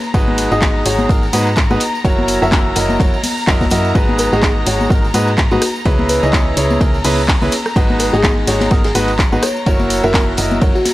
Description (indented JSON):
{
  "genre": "piano house",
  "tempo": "126 BPM",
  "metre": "4/4",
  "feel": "swing 57% on 16ths",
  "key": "G# minor",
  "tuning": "A4 = 439 Hz",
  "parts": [
    { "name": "dark symphonic violin section", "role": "sustained chords", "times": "0.0-10.9 s", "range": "A#5", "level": "-25 LUFS", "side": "left 2 dB", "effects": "sidechain pumping" },
    { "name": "tambourine and congas", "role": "percussion", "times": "0.0-10.9 s", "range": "none", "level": "-23 LUFS", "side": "left 3 dB", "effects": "none" },
    { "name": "clear concert grand piano", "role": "riff", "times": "0.1-10.8 s", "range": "C#3 to E5", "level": "-18 LUFS", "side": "right 1 dB", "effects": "sidechain pumping, tape echo" },
    { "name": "solid FM bass", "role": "bass", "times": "0.1-10.7 s", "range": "F#1 to G#2", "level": "-20 LUFS", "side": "equal", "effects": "sidechain pumping" },
    { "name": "electronic kick drum", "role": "drums", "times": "0.1-10.7 s", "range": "none", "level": "-15 LUFS", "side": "equal", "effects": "overdrive, studio reverb" },
    { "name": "warm soul drum kit", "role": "drums", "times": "0.1-10.9 s", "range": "hi-hat, ride cymbal, snare drum", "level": "-28 LUFS", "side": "left 2 dB", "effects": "sidechain pumping on cymbals, high-pass filter on cymbals, studio reverb, sidechain pumping on hats, high-pass filter on hats, high-pass filter on snare, high-pass filter on room" },
    { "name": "garage drum kit", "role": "drums", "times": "0.4-10.9 s", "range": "handclaps, hi-hat, rim click", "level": "-21 LUFS", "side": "equal", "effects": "studio reverb" },
    { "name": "bell-like FM electric piano", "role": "melody", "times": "4.2-10.9 s", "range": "F#4 to C#5", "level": "-22 LUFS", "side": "equal", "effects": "chorus" }
  ],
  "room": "small room ambience",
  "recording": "none",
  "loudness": "-12 LUFS",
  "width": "side -16 dB against mid",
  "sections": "0.0-10.9 A section",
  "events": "none",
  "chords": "0.0 G#m7; 1.8 F#7; 4.0 G#m7; 5.6 C#m7; 7.5 G#m7; 9.4 F#7",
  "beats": "| 0.14 0.62 1.09 1.57 | 2.05 2.52 3.00 3.48 | 3.95 4.43 4.90 5.38 | 5.86 6.33 6.81 7.28 | 7.76 8.24 8.71 9.19 | 9.66 10.14 10.62"
}